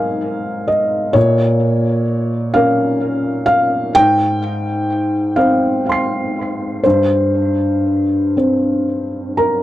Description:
neoclassical minimalist piano; 39-44 BPM (dotted quarters); 6/8; rubato; Bb dorian; A4 = 440 Hz
felt-muted upright piano; solo; 0.0-9.6 s; G2 to C7; -14 LUFS; equal; tape echo
light reverb; dry, close 1970s-style studio recording; -14 LUFS; side -14 dB against mid
0.0-9.6 A section
0.0 Absus2; 1.2 Bbm; 3.9 Fm/Ab; 6.8 C5/G

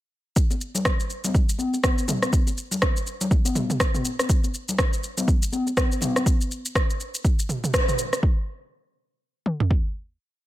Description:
house; 122 BPM; 4/4; swing 58% on 16ths
deep house drum kit; drums; 0.4-9.8 s; kick drum, toms; -22 LUFS; equal
deep house drum kit; drums; 0.4-8.2 s; rim click, shaker, toms; -25 LUFS; equal
congas; percussion; 0.5-6.2 s; -28 LUFS; left 2 dB
light reverb; -21 LUFS; side -15 dB against mid
0.4-8.2 drop; 8.2-10.5 final hit
drop 0.4-8.2; band accent 7.7

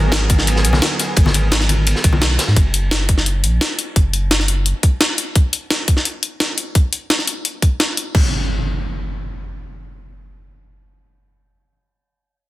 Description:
liquid drum and bass; 172 BPM; 4/4; straight; A4 = 441 Hz
warm analog pad; sustained chords; 0.0-2.5 s; F#3 to A#4; -25 LUFS; right 2 dB; lush chorus
warm sub bass; bass; 0.0-4.7 s; F#1 to G#2; -17 LUFS; equal
breakbeat sampler-style drum kit; drums; 0.1-8.2 s; crash cymbal, hi-hat, snare drum; -18 LUFS; left 1 dB; small room ambience
crunchy breakbeat drum kit; drums; 0.1-2.6 s; ride cymbal, snare drum; -24 LUFS; equal; high-pass filter on cymbals, small room ambience, high-pass filter on snare, high-pass filter on room
electronic kick drum; drums; 0.3-8.2 s; -13 LUFS; equal; small room ambience
congas; percussion; 0.3-2.2 s; -24 LUFS; left 2 dB
impact; sound effects; 8.1-11.5 s; -23 LUFS; equal
light reverb, digital ambience; dense, heavily limited modern master; -14 LUFS; side -16 dB against mid
0.0-8.1 A section; 8.1-10.9 B section
0.0 G#m9; 2.6 N.C.

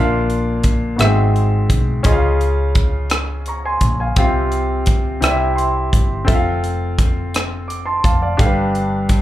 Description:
slow gospel; 57 BPM (dotted quarters); 6/8; straight; A4 = 440 Hz
clear baby grand piano; accompaniment; 0.0-9.2 s; G2 to D6; -19 LUFS; left 1 dB; plate reverb, slapback echo
hollow-body short-scale fingered electric bass; bass; 0.0-9.2 s; F1 to Db2; -20 LUFS; equal
crisp fusion drum kit; drums; 0.3-9.2 s; hi-hat, kick drum, rim click; -17 LUFS; equal
light reverb; live gig heard through the venue's PA, club ambience; -15 LUFS; side -14 dB against mid
0.0-9.2 A section
grand piano fill 5.2-6.3
0.0 Bb; 1.0 Ab7alt; 2.0 Db; 4.2 Csus4; 5.2 C; 6.3 F; 8.4 G7

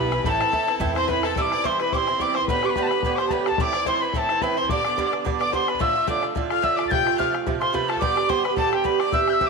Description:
celtic folk, Celtic reel; 216 BPM; 4/4; swing 54% on 8ths; A4 = 440 Hz
wooden whistle; melody; 0.0-9.5 s; G5 to A6; -24 LUFS; equal; tape echo
clear fiddle; second line; 0.0-9.5 s; G4 to G5; -27 LUFS; left 10 dB
Irish bouzouki; accompaniment; 0.0-9.5 s; G2 to G4; -25 LUFS; right 11 dB
upright bass; bass; 0.0-1.3 s; A1 to E2; -29 LUFS; left 1 dB
bodhran; percussion; 0.1-9.5 s; -30 LUFS; left 5 dB
moderate echo chamber reverb, RT60 1.9 s, small room ambience; 1960s-style stereo with parts hard left and right; -20 LUFS; side -4 dB against mid
0.0-1.4 A section; 1.4-9.5 B section
0.3 Am; 1.4 C; 2.5 Gadd9; 3.6 Am; 4.7 G; 5.8 Dm; 6.9 F; 8.0 G

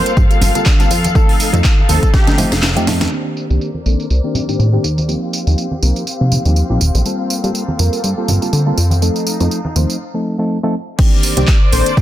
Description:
filtered disco house; 122 BPM; 4/4; swing 56% on 16ths; C dorian; A4 = 440 Hz
analog synth brass; melody; 0.0-2.5, 11.7-11.9 s; G4 to C5; -23 LUFS; left 1 dB; chorus, phaser, sidechain pumping, low-pass filter, tape echo
reed electric piano; accompaniment; 0.0-11.9 s; Eb3 to C5; -20 LUFS; equal; phaser, sidechain pumping, low-pass filter
rich studio string section; sustained chords; 0.0-12.0 s; Bb3 to F5; -24 LUFS; left 3 dB; sidechain pumping, low-pass filter
plucky analog bass; bass; 0.0-12.0 s; Eb1 to D3; -15 LUFS; equal; sidechain pumping, low-pass filter
house drum kit; drums; 0.1-12.0 s; crash cymbal, handclaps, hi-hat, snare drum, tambourine; -21 LUFS; right 1 dB; sidechain pumping on hats, low-pass filter on hats, sidechain pumping on perc, low-pass filter on perc, low-pass filter on snare, sidechain pumping on cymbals, low-pass filter on cymbals
tambourine and congas; percussion; 0.1-10.0 s; -24 LUFS; right 2 dB
electronic kick drum; drums; 0.2-2.2, 11.0-12.0 s; -12 LUFS; equal; overdrive
little or no reverb; dense, heavily limited modern master; -12 LUFS; side -13 dB against mid
0.0-3.1 A section; 3.1-11.0 B section; 11.0-12.0 C section
filter sweep 0.0-3.1; drum fill 2.1-3.1; kick drops out 2.6-3.1; break 10.0-11.0; drop 11.0-12.0
0.0 Gm11; 1.2 F7; 3.1 Cm9; 5.1 Eb69; 7.1 Gm11; 9.0 F7; 11.0 Cm9

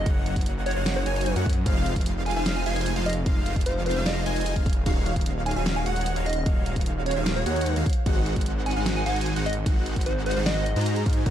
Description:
future bass; 150 BPM; 4/4; half-time; A4 = 439 Hz
plucky unison lead; melody; 0.0-11.0 s; C5 to Ab5; -31 LUFS; right 1 dB; sidechain pumping, ping-pong delay
wide detuned saw bass; bass; 0.0-11.3 s; Eb1 to Ab2; -27 LUFS; equal; chorus, sidechain pumping
airy dreamy lead; arpeggios; 0.1-11.3 s; F5 to Bb5; -36 LUFS; left 1 dB; chorus, sidechain pumping
supersaw chords; riff; 0.1-11.3 s; Ab3 to Bb5; -31 LUFS; right 1 dB; phaser, sidechain pumping
electronic kick drum; drums; 0.1-11.3 s; -24 LUFS; equal
pop drum kit; drums; 0.1-11.3 s; hi-hat, snare drum; -33 LUFS; right 1 dB
digital ambience; dark, warm production; -22 LUFS; side -10 dB against mid
0.0-11.3 A section
0.0 Gb6; 1.7 Fm7; 4.9 Ebm11; 7.9 Ab7

